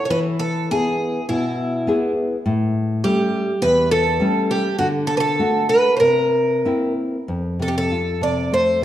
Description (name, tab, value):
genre	fado-style ballad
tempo	100 BPM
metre	4/4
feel	uneven beats, rubato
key	unclear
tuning	A4 = 440 Hz
part	picked twelve-string acoustic guitar	melody	0.0-8.8 s	E4 to D5	-19 LUFS	right 1 dB	none
part	nylon-string guitar	accompaniment	0.1-8.8 s	E2 to G#4	-21 LUFS	left 1 dB	none
room	wet recital hall reverb, RT60 1.5 s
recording	dark, warm production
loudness	-17 LUFS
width	side -12 dB against mid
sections	0.0-7.3 A section; 7.3-8.8 B section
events	none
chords	0.1 E; 2.5 A7; 4.8 D; 6.0 C7; 7.3 F